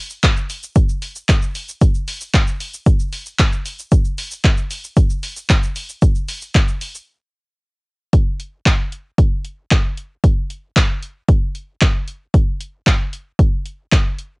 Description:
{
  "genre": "pop",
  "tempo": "114 BPM",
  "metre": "4/4",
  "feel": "straight",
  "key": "none",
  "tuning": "none",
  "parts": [
    { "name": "punchy analog drum machine", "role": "drums", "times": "0.1-14.3 s", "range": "handclaps, hi-hat, kick drum, shaker", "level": "-14 LUFS", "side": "equal", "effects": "vintage 12-bit sampler grit" }
  ],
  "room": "little or no reverb",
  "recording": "home recording on cassette",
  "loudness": "-16 LUFS",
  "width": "side -30 dB against mid",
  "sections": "0.0-8.1 A section; 8.1-14.4 B section",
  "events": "drop 0.0-8.1; break 7.1-8.1",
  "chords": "none"
}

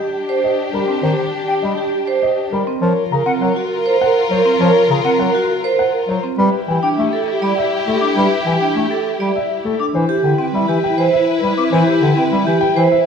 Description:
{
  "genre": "classical, minimalist pattern music",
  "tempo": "101 BPM",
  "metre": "3/4",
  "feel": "straight",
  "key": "C major",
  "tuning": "A4 = 439 Hz",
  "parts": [
    { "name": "warm grand piano", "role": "melody", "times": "0.0-13.1 s", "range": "A4 to A#5", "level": "-23 LUFS", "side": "left 9 dB", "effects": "none" },
    { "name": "mellow hollow wooden-headed alto flute", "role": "second line", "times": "0.0-13.0 s", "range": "E4 to A#4", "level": "-20 LUFS", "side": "equal", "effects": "none" },
    { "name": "warm studio violin section", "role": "sustained chords", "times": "0.0-13.1 s", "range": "D4 to B4", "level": "-23 LUFS", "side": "left 4 dB", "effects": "none" },
    { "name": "vibraphone with medium hard mallets", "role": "arpeggios", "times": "0.0-13.0 s", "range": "C4 to D5", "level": "-20 LUFS", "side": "right 6 dB", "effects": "none" },
    { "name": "clear bass clarinet", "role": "accompaniment", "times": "0.7-12.9 s", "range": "C#3 to A3", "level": "-19 LUFS", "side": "equal", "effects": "none" },
    { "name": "bright concert flute", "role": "arpeggios", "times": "1.5-12.2 s", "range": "F#5 to D6", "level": "-25 LUFS", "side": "left 2 dB", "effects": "none" }
  ],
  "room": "moderate recital hall reverb, RT60 1.7 s",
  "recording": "none",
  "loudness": "-14 LUFS",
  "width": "side -6 dB against mid",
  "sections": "0.0-13.1 A section",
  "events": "none",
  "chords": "0.0 Ebmaj7; 2.8 F#maj7; 6.4 Em7; 9.9 Cmaj7"
}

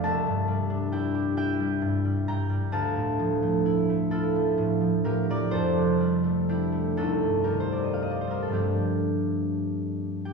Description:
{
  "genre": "classical, solo harp piece",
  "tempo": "34-46 BPM (dotted quarters)",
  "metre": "6/8",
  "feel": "rubato",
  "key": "unclear",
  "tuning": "A4 = 441 Hz",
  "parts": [
    { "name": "concert harp", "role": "solo", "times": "0.0-10.3 s", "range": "C2 to Bb5", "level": "-24 LUFS", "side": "equal", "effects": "none" }
  ],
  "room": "wet scoring stage reverb, RT60 2.1 s",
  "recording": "heard from further back in the room, small room ambience",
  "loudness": "-24 LUFS",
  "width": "side -4 dB against mid",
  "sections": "0.0-10.3 A section",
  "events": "none",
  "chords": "0.0 Cadd9; 2.7 Dmadd9; 5.5 F69; 7.0 Cm6; 8.5 G9sus4"
}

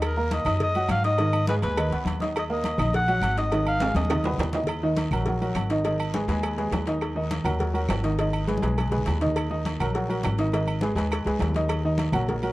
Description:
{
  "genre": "latin, salsa",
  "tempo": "206 BPM",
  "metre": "4/4",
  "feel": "straight",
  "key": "Eb minor",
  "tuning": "A4 = 441 Hz",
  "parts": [
    { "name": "warm upright piano", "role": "accompaniment", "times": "0.0-12.5 s", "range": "Eb3 to Eb6", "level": "-27 LUFS", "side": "equal", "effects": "none" },
    { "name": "upright bass", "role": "bass", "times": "0.0-12.5 s", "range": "Ab1 to Ab2", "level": "-27 LUFS", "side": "equal", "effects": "none" },
    { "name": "agogo bells and timbales", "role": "percussion", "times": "0.0-12.5 s", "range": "none", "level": "-34 LUFS", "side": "right 3 dB", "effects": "none" },
    { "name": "claves", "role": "percussion", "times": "0.0-12.3 s", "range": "none", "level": "-43 LUFS", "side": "right 6 dB", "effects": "none" },
    { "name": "congas", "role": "percussion", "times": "0.0-12.5 s", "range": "none", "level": "-33 LUFS", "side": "left 2 dB", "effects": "none" },
    { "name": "cowbell", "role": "percussion", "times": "0.0-12.4 s", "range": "none", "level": "-35 LUFS", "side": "left 1 dB", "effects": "none" },
    { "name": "guiro", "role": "percussion", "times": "0.0-12.5 s", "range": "none", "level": "-47 LUFS", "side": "left 4 dB", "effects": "none" },
    { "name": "clear oboe", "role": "melody", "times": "0.1-4.5 s", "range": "Bb4 to Gb5", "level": "-28 LUFS", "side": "left 1 dB", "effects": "none" }
  ],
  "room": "light reverb",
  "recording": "worn, warbling old tape, cassette tape, warbly pitch drift",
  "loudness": "-22 LUFS",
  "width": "side -18 dB against mid",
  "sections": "0.0-4.7 A section; 4.7-12.5 B section",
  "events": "drum fill 3.8-4.7, 8.5-9.4",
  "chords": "0.0 Ebm; 1.2 Abm; 2.4 Ebm; 3.5 Abm; 4.7 Ebm; 5.9 Abm; 7.0 Ebm; 8.2 Abm; 9.4 Ebm; 10.5 Abm; 11.7 Ebm"
}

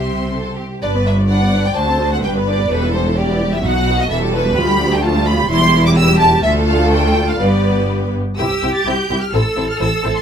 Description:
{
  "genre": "quick classical-period movement for string orchestra",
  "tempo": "128 BPM",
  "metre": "2/4",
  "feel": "straight",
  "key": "G major, C major from 4.6 s",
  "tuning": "A4 = 440 Hz",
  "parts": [
    { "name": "rich studio violin section", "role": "melody", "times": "0.0-10.2 s", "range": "B4 to A6", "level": "-19 LUFS", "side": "right 1 dB", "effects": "none" },
    { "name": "rich symphonic violin section", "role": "second line", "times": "0.0-10.1 s", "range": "E4 to G5", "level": "-22 LUFS", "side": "equal", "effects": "none" },
    { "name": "rich symphonic viola section", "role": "accompaniment", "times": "0.0-10.1 s", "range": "E3 to D5", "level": "-22 LUFS", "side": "equal", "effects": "none" },
    { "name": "clear studio double bass section", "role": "bass", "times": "0.0-10.1 s", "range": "E1 to D2", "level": "-19 LUFS", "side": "equal", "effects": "none" },
    { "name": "clear symphonic cello section", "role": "bass", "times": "0.0-10.2 s", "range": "D2 to A4", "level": "-20 LUFS", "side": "equal", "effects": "none" }
  ],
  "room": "light reverb",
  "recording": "close, detailed microphones",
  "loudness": "-13 LUFS",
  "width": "side -8 dB against mid",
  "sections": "0.8-8.4 A section; 8.4-10.2 B section",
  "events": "none",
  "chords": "0.0 C; 0.8 G; 1.8 D7; 2.2 G; 2.7 Em; 3.6 B7; 4.1 Em; 4.6 G5/D; 5.5 Emadd11; 6.4 Dm; 7.4 G; 8.4 C; 9.3 Am"
}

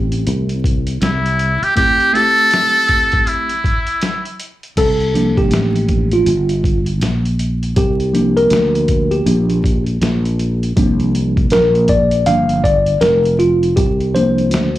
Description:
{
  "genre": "hip hop, jazz-hop",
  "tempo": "80 BPM",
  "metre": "4/4",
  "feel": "swing 62% on 16ths",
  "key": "unclear",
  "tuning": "A4 = 440 Hz",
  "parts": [
    { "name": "mellow tine electric piano", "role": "accompaniment", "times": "0.0-14.8 s", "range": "F3 to F5", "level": "-15 LUFS", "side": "equal", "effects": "medium stereo tremolo, slapback echo" },
    { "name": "sustaining fretless electric bass", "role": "bass", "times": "0.0-14.8 s", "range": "F1 to D2", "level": "-17 LUFS", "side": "equal", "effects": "analog chorus" },
    { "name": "boom bap sampler-style drum kit", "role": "drums", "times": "0.1-14.8 s", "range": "crash cymbal, hi-hat, kick drum, snare drum", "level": "-20 LUFS", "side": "equal", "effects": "none" },
    { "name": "trumpet with metal mute", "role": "melody", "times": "1.0-4.4 s", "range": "E4 to A4", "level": "-13 LUFS", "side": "equal", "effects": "slapback echo, plate reverb" }
  ],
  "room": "light reverb",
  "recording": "live gig heard through the venue's PA, club reverb, vinyl crackle",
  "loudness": "-12 LUFS",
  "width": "side -14 dB against mid",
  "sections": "0.0-4.8 A section; 4.8-14.8 B section",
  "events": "tine electric piano solo 4.8-14.8",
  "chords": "0.0 D9sus4 (rootless); 4.8 C9sus4"
}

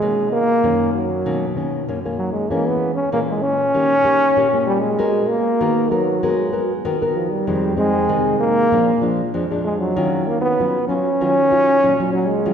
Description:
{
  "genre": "samba",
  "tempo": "96 BPM",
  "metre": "4/4",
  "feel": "straight",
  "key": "Eb minor",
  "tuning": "A4 = 440 Hz",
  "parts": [
    { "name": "breathy trombone", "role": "melody", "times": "0.0-12.5 s", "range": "F3 to Db4", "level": "-17 LUFS", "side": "equal", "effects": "none" },
    { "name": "nylon-string guitar", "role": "accompaniment", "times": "0.0-12.5 s", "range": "F2 to Bb4", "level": "-21 LUFS", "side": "left 1 dB", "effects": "none" }
  ],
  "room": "wet concert hall reverb, RT60 2.1 s",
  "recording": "recorded in a church or concert hall",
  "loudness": "-16 LUFS",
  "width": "side -8 dB against mid",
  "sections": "0.0-12.5 A section",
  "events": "none",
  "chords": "0.0 Bmaj9; 2.5 Bbm7b5; 3.7 Eb7; 5.0 Abm9; 7.5 Fm7; 8.7 Bb7; 10.0 Ebm9"
}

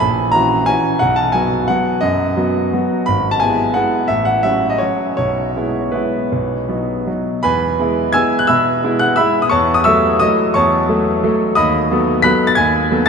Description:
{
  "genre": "classical, piano waltz",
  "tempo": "154-186 BPM",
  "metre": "3/4",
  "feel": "rubato",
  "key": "E major",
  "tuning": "A4 = 440 Hz",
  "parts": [
    { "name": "clear concert grand piano", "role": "solo", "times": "0.0-13.1 s", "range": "G#1 to B6", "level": "-13 LUFS", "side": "equal", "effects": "none" }
  ],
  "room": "wet cathedral reverb, RT60 6.5 s",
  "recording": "in a vast, echoing space",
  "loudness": "-13 LUFS",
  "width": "side -6 dB against mid",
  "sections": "0.0-7.4 A section; 7.4-13.1 B section",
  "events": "none",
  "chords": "0.0 F#7/A#; 1.0 B; 3.1 E/G#; 4.1 F#m/A; 5.2 E/B; 6.3 B; 7.4 E; 9.5 F#m7/E; 11.6 B7/D#"
}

